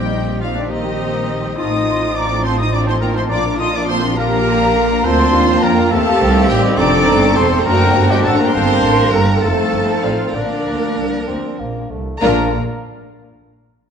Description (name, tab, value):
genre	quick classical-period movement for symphony orchestra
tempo	63-70 BPM (dotted quarters)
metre	6/8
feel	straight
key	Bb major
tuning	A4 = 440 Hz
part	warm studio violin section	melody	0.0-12.6 s	D5 to Eb6	-24 LUFS	left 3 dB	none
part	mellow large flute ensemble	second line	0.0-12.6 s	Bb4 to C6	-24 LUFS	left 1 dB	none
part	rich studio violin section	second line	0.0-12.6 s	A3 to Bb4	-27 LUFS	left 3 dB	none
part	warm clarinet	second line	0.0-12.5 s	C4 to G4	-26 LUFS	left 1 dB	none
part	warm oboe	second line	0.0-12.5 s	D4 to Eb5	-26 LUFS	equal	none
part	rich studio viola section	accompaniment	0.0-12.6 s	D3 to D4	-24 LUFS	right 2 dB	none
part	warm bassoon	accompaniment	0.0-12.5 s	A3 to D4	-26 LUFS	equal	none
part	mellow French horn section	sustained chords	0.0-12.5 s	D3 to Eb4	-21 LUFS	left 4 dB	none
part	clear trumpet section	stabs	0.0-12.5 s	D4 to Eb5	-23 LUFS	right 2 dB	none
part	rich studio double bass section	bass	0.0-12.6 s	E1 to F2	-20 LUFS	right 2 dB	none
part	warm studio cello section	bass	0.0-12.6 s	Bb2 to Bb4	-23 LUFS	right 3 dB	none
room	wet recital hall reverb, RT60 1.7 s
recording	dark, warm production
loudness	-13 LUFS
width	side -7 dB against mid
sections	0.0-12.2 A section; 12.2-13.9 B section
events	slowing down 7.7-12.2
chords	0.0 Cm7/Bb; 1.6 F7/A; 3.3 Bb; 5.0 Bb/D; 5.9 Cm7; 6.8 F; 7.7 D7/F#; 8.5 Gm; 9.4 F7; 10.3 Bb